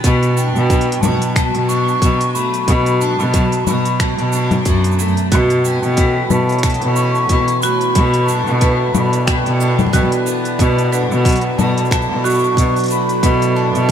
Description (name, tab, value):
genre	folktronica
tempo	91 BPM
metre	4/4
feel	swing 56% on 16ths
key	B minor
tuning	A4 = 442 Hz
part	picked steel-string acoustic guitar	arpeggios	0.0-13.9 s	B2 to G4	-21 LUFS	left 1 dB	lush chorus, diffuse ambient delay
part	rich cello	bass	0.0-13.9 s	F#2 to B2	-17 LUFS	equal	none
part	electronic kick drum	drums	0.0-13.9 s	none	-16 LUFS	equal	studio reverb
part	organic electronic drum kit	drums	0.0-13.9 s	cabasa, congas, finger snaps, hi-hat	-23 LUFS	left 2 dB	studio reverb
part	mellow hollow concert flute	melody	0.4-13.9 s	F#5 to C#6	-22 LUFS	left 1 dB	diffuse ambient delay
part	marimba with hard mallets	second line	5.3-13.5 s	F#4 to B4	-22 LUFS	right 2 dB	diffuse ambient delay
part	hand-pumped harmonium	sustained chords	5.3-13.9 s	B3 to D5	-25 LUFS	right 1 dB	none
room	moderate huge ambient reverb, RT60 8.6 s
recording	dreamy mix soaked in reverb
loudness	-13 LUFS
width	side -8 dB against mid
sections	0.0-13.9 A section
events	none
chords	0.0 Bm7; 5.3 A7/B; 8.0 Bm7